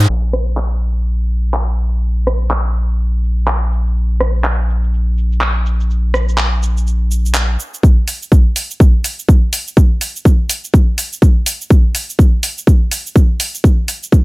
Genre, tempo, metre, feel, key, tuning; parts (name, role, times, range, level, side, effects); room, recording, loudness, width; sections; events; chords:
deep house; 124 BPM; 4/4; swing 59% on 16ths; A4 = 440 Hz
round analog bass; bass; 0.0-7.6 s; Bb1; -15 LUFS; equal; sidechain pumping
house drum kit; drums; 0.0-14.2 s; crash cymbal, handclaps, hi-hat, rim click, shaker; -19 LUFS; right 1 dB; high-pass filter on hats, low-pass filter on hats, high-pass filter on perc, low-pass filter on perc, high-pass filter on snare, low-pass filter on snare, high-pass filter on cymbals, low-pass filter on cymbals, high-pass filter on room, low-pass filter on room
electronic kick drum; drums; 7.8-14.2 s; -8 LUFS; equal
little or no reverb; low-pass filter; -12 LUFS; side -22 dB against mid
0.1-7.8 A section; 7.8-14.2 B section
filter sweep on drum 0.1-7.8; filter sweep 0.1-7.8; build-up 7.8-14.2